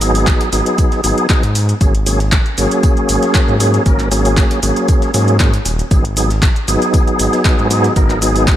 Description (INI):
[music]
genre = deep house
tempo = 117 BPM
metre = 4/4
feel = swing 53% on 16ths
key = G# minor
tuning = A4 = 440 Hz
[part]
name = tonewheel organ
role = stabs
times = 0.0-8.6 s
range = F#3 to A#4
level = -16 LUFS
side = equal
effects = chorus vibrato, fast rotary speaker, vintage 12-bit sampler grit, sidechain pumping, analog delay
[part]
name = smooth synth bass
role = bass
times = 0.0-8.5 s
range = D#1 to G#2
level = -16 LUFS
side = equal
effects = tube saturation, sidechain pumping
[part]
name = breakbeat sampler-style drum kit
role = drums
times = 0.0-8.6 s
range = hi-hat, snare drum, tambourine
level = -31 LUFS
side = equal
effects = none
[part]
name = deep house drum kit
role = drums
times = 0.0-8.6 s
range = handclaps, hi-hat, shaker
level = -21 LUFS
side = equal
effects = none
[part]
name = electronic kick drum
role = drums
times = 0.3-8.6 s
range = none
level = -13 LUFS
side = equal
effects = none
[sound]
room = light reverb, digital ambience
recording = none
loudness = -11 LUFS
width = side -12 dB against mid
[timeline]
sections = 0.0-8.6 A section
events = none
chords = 0.0 G#m7; 1.8 F#add9/G#; 5.9 G#m7